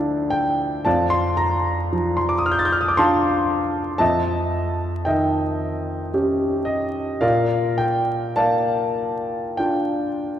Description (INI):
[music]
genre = classical, impressionist solo piano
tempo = 46-59 BPM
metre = 3/4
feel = rubato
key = F mixolydian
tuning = A4 = 440 Hz
[part]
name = warm concert grand piano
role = solo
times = 0.0-10.4 s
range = D2 to A6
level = -19 LUFS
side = equal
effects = none
[sound]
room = wet church reverb, RT60 2.6 s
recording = recorded in a church or concert hall, vinyl crackle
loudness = -19 LUFS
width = side -10 dB against mid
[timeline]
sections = 0.0-10.4 A section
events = none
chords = 0.0 Dmadd9; 0.9 F6; 4.0 A7#11/F; 7.2 Bbmaj7